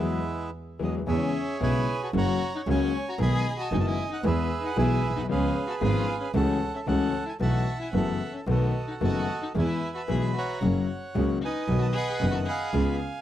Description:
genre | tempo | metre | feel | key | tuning
tango | 113 BPM | 4/4 | rubato | E major | A4 = 440 Hz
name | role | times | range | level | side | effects
bandoneon | melody | 0.0-13.2 s | G#3 to B5 | -31 LUFS | right 4 dB | none
warm violin | second line | 0.0-12.9 s | B3 to G#4 | -35 LUFS | left 4 dB | none
warm concert grand piano | accompaniment | 0.0-13.0 s | F#1 to G#4 | -28 LUFS | left 5 dB | none
clear double bass | bass | 0.0-13.0 s | F#1 to E2 | -28 LUFS | right 2 dB | none
room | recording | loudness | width
studio ambience | dry, close 1970s-style studio recording | -24 LUFS | side -12 dB against mid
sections
0.0-1.1 A section; 1.1-13.2 B section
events
band accent 0.0-1.1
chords
0.0 Eadd9; 1.1 E6; 2.1 F#; 3.2 B6; 4.2 E; 5.3 C#7; 6.3 F#m7/C#; 7.4 B7sus4; 8.5 B7; 9.5 E; 10.6 F#; 11.7 B

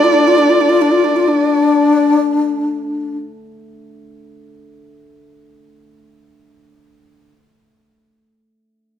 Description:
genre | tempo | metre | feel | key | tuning
chinese traditional, Chinese chamber ensemble | 63 BPM | 4/4 | rubato | D yu mode | A4 = 440 Hz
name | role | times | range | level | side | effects
dark erhu | melody | 0.0-2.1 s | D5 | -15 LUFS | right 4 dB | none
breathy bright low xiao | second line | 0.0-3.2 s | D4 to F4 | -13 LUFS | left 3 dB | none
hammered dulcimer | accompaniment | 0.0-7.3 s | D3 to D4 | -33 LUFS | equal | none
room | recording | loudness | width
wet recital hall reverb, RT60 1.4 s | minimal, uncompressed stereo recording | -11 LUFS | side -9 dB against mid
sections
0.0-2.4 A section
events
none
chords
none

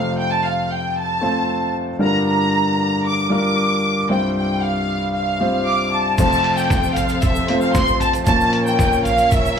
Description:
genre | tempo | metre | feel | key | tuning
piano-driven pop | 115 BPM | 4/4 | straight | F major | A4 = 440 Hz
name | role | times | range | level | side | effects
warm studio violin section | melody | 0.0-9.6 s | E5 to D6 | -20 LUFS | equal | slapback echo
clear concert grand piano | accompaniment | 0.0-9.6 s | C2 to Db5 | -20 LUFS | left 1 dB | slapback echo
dark studio string section | sustained chords | 6.2-9.6 s | F3 to Db5 | -28 LUFS | right 1 dB | none
trip hop sampler-style drum kit | drums | 6.2-9.4 s | crash cymbal, hi-hat, kick drum, snare drum, toms | -20 LUFS | right 1 dB | none
egg shaker | percussion | 6.2-9.6 s | none | -38 LUFS | left 2 dB | none
room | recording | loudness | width
light reverb | live gig heard through the venue's PA, club reverb | -16 LUFS | side -7 dB against mid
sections
0.0-6.2 A section; 6.2-9.6 B section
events
none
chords
0.0 F; 2.0 Gm7; 4.1 Csus4; 6.2 F; 8.3 Bbm

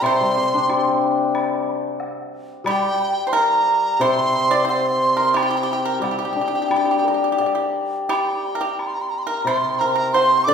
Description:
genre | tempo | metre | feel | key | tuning
chinese traditional, Chinese chamber ensemble | 89 BPM | 4/4 | rubato | G yu mode | A4 = 439 Hz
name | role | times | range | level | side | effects
mellow hollow large dizi | melody | 0.0-10.5 s | G5 to D6 | -21 LUFS | right 1 dB | none
pipa | second line | 0.0-10.5 s | G4 to D5 | -23 LUFS | right 2 dB | none
hammered dulcimer | accompaniment | 0.0-10.5 s | C3 to D5 | -22 LUFS | left 4 dB | none
woodblock | percussion | 0.0-10.3 s | none | -30 LUFS | equal | none
room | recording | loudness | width
wet recital hall reverb, RT60 1.8 s | heard from further back in the room | -17 LUFS | side -6 dB against mid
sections
0.0-10.5 A section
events
none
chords
none

